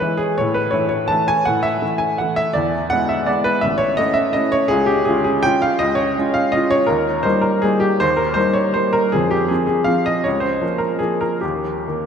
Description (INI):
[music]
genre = classical, piano waltz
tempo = 138-175 BPM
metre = 3/4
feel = rubato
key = unclear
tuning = A4 = 439 Hz
[part]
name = clear upright piano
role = solo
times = 0.0-12.1 s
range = A1 to A5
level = -16 LUFS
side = equal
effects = none
[sound]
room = wet cathedral reverb, RT60 5.2 s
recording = in a vast, echoing space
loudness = -16 LUFS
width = side -7 dB against mid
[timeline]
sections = 0.0-12.1 A section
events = none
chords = 0.4 A5; 2.5 E7; 3.6 A; 4.7 Db; 6.9 Eb; 9.1 F5; 10.3 Bbm/Db; 11.4 Eb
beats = 0.02 | 0.38 0.74 1.11 | 1.48 1.82 2.19 | 2.55 2.91 3.28 | 3.64 3.99 4.35 | 4.70 5.06 5.43 | 5.79 6.15 6.53 | 6.89 7.25 7.64 | 8.02 8.38 8.77 | 9.14 9.51 9.89 | 10.26 10.63 11.03 | 11.44 11.87